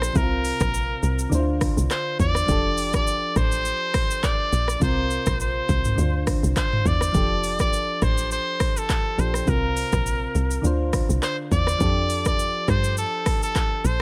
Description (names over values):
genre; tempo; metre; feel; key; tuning
afrobeats; 103 BPM; 4/4; swing 55% on 16ths; F major; A4 = 440 Hz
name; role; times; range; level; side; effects
brilliant trumpet; melody; 0.0-14.0 s; A4 to D5; -28 LUFS; equal; delay
soft electric-piano-like synth keys; accompaniment; 0.0-14.0 s; C3 to C5; -32 LUFS; equal; chorus
deep log drum bass; bass; 0.0-14.0 s; F1 to G2; -26 LUFS; equal; none
afro-pop drum kit; drums; 0.0-14.0 s; handclaps, hi-hat, kick drum, rim click, shaker, toms; -27 LUFS; equal; none
room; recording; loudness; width
digital ambience; none; -23 LUFS; mono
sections
0.0-14.0 A section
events
none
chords
0.2 C7sus4; 1.3 Dm7; 2.5 F69; 4.8 C7sus4; 6.0 Dm7; 7.1 F69; 9.5 C7sus4; 10.6 Dm7; 11.8 F69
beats
| 0.16 0.74 1.32 1.90 | 2.49 3.07 3.65 4.23 | 4.82 5.40 5.98 6.56 | 7.15 7.73 8.31 8.89 | 9.48 10.06 10.64 11.22 | 11.81 12.39 12.97 13.55